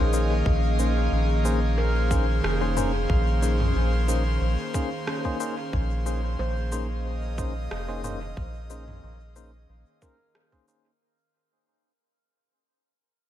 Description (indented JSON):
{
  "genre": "ambient dub",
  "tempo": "91 BPM",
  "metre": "4/4",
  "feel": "swing 53% on 16ths",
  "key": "Bb minor",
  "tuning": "A4 = 439 Hz",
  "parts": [
    { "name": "airy breathy pad", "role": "sustained chords", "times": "0.0-11.0 s", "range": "Eb3 to Eb5", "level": "-31 LUFS", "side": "equal", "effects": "chorus" },
    { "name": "handpan", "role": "arpeggios", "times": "0.0-10.6 s", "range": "Bb3 to C5", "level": "-38 LUFS", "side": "right 2 dB", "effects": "dub echo" },
    { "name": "tine electric piano", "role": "stabs", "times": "0.0-10.9 s", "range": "Bb3 to C5", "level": "-32 LUFS", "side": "left 2 dB", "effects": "fast stereo tremolo, dub echo" },
    { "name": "round analog bass", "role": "bass", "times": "0.0-9.8 s", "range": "F1 to Bb1", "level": "-25 LUFS", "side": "equal", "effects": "none" },
    { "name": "drifting glass-harmonics texture", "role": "texture", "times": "0.0-11.0 s", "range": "F5", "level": "-36 LUFS", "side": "left 1 dB", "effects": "chorus, built-in reverb" },
    { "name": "organic electronic drum kit", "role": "drums", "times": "0.1-10.8 s", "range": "rim click, shaker, toms", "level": "-35 LUFS", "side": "equal", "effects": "overdrive, dub echo" },
    { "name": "electronic kick drum", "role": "drums", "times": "0.5-10.6 s", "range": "none", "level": "-28 LUFS", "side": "equal", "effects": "overdrive" }
  ],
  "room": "digital ambience",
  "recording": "none",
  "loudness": "-23 LUFS",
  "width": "side -12 dB against mid",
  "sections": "0.0-11.0 A section",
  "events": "fade-out 4.0-11.0",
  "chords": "0.0 Bbm11"
}